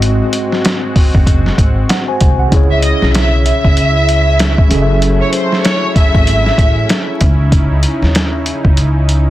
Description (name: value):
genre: hip hop, boom-bap hip-hop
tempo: 96 BPM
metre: 4/4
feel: swing 60% on 16ths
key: C# harmonic minor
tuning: A4 = 440 Hz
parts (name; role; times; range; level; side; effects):
- mellow tine electric piano; accompaniment; 0.0-7.2 s; G#2 to G#5; -18 LUFS; equal; medium stereo tremolo, high-pass filter, low-pass filter
- warm analog pad; sustained chords; 0.0-9.3 s; C#3 to F#4; -22 LUFS; equal; lush chorus, high-pass filter, low-pass filter
- upright bass; bass; 0.0-9.3 s; F#1 to D#2; -13 LUFS; equal; none
- trip hop sampler-style drum kit; drums; 0.0-9.3 s; hi-hat, kick drum, snare drum; -12 LUFS; equal; none
- warm symphonic violin section; melody; 2.7-7.0 s; B#4 to E5; -16 LUFS; equal; high-pass filter, low-pass filter, tape echo
room: little or no reverb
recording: dense, heavily limited modern master, vinyl crackle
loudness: -10 LUFS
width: side -14 dB against mid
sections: 0.0-9.3 A section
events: none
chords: 0.0 G#7; 2.5 C#m; 4.7 F#m7; 7.2 C#madd9